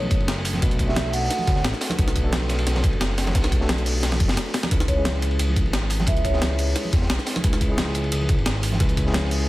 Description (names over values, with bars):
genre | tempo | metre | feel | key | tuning
liquid drum and bass | 176 BPM | 4/4 | straight | C# phrygian | A4 = 440 Hz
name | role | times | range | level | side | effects
mellow tine electric piano | accompaniment | 0.0-9.5 s | G#3 to B4 | -30 LUFS | equal | dub echo
smooth synth bass | bass | 0.0-9.5 s | F#1 to E2 | -24 LUFS | equal | none
congas and bongos | percussion | 0.0-9.2 s | none | -32 LUFS | right 2 dB | none
breakbeat sampler-style drum kit | drums | 0.1-9.4 s | hi-hat, snare drum | -27 LUFS | equal | studio ambience
crunchy breakbeat drum kit | drums | 0.1-9.4 s | hi-hat, ride cymbal, snare drum | -30 LUFS | equal | high-pass filter on cymbals, studio ambience, high-pass filter on hats, high-pass filter on snare, high-pass filter on room
electronic kick drum | drums | 0.1-9.0 s | none | -22 LUFS | equal | studio ambience
vibraphone with medium mallets | melody | 0.9-1.6, 4.9-6.5 s | C#5 to F#5 | -29 LUFS | right 1 dB | digital delay
room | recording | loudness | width
studio ambience | dense, heavily limited modern master | -20 LUFS | side -17 dB against mid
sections
0.0-9.5 A section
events
drum fill 4.0-4.7; break 4.4-4.7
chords
0.0 Bm7; 4.7 C#m7